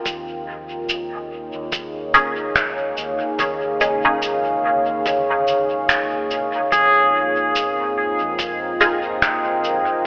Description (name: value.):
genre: ambient dub.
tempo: 72 BPM.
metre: 4/4.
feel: swing 57% on 16ths.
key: unclear.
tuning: A4 = 440 Hz.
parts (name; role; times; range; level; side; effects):
deep dark ambient pad; sustained chords; 0.0-10.1 s; Bb3 to G5; -24 LUFS; equal; chorus, built-in reverb.
fingered electric bass; bass; 0.1-9.8 s; Bb1 to F2; -43 LUFS; equal; none.
electronic cabasa and finger snaps; drums; 0.1-9.8 s; none; -25 LUFS; equal; dub echo.
electronic kick drum; drums; 0.1-8.6 s; none; -33 LUFS; equal; none.
filtered dub chord stab; stabs; 2.1-9.0 s; Db4 to Ab4; -22 LUFS; equal; phaser, dub echo.
pedal steel guitar; arpeggios; 6.7-8.6 s; Ab4; -23 LUFS; equal; dub echo.
room: wet concert hall reverb, RT60 1.9 s, digital ambience.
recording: telephone sound.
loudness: -20 LUFS.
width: mono.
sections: 0.0-10.1 A section.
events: none.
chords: 0.1 Eb7sus4; 6.7 Fm7.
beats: | 0.06 0.89 1.72 2.56 | 3.39 4.22 5.06 5.89 | 6.72 7.56 8.39 9.22 | 10.06.